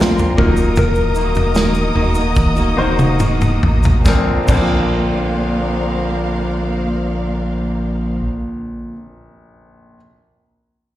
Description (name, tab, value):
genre	pop ballad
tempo	70-79 BPM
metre	4/4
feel	straight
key	Bb major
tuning	A4 = 440 Hz
part	soft struck synth lead	melody	0.0-3.2 s	F4 to Bb4	-22 LUFS	left 4 dB	chorus, tremolo, plate reverb, slapback echo
part	clear concert grand piano	accompaniment	0.0-10.0 s	Bb1 to C5	-23 LUFS	left 3 dB	plate reverb, slapback echo
part	warm studio string section	sustained chords	0.0-8.2 s	Bb3 to Eb6	-24 LUFS	left 1 dB	plate reverb
part	fingerpicked steel-string acoustic guitar	arpeggios	0.0-9.0 s	Bb2 to Gb4	-22 LUFS	right 2 dB	plate reverb
part	sub bass with octave	bass	0.0-8.2 s	Eb1 to Bb1	-20 LUFS	equal	none
part	natural country drum kit	drums	0.0-4.7 s	crash cymbal, kick drum, snare drum, toms	-17 LUFS	equal	none
part	egg shaker	percussion	0.2-4.7 s	none	-38 LUFS	left 2 dB	none
room	light reverb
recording	live gig heard through the venue's PA, recital hall reverb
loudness	-14 LUFS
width	side -14 dB against mid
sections	0.0-4.1 A section; 4.1-7.5 B section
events	slowing down 0.0-4.1; drum fill 2.4-4.1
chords	0.4 Ebm; 4.1 Bbadd9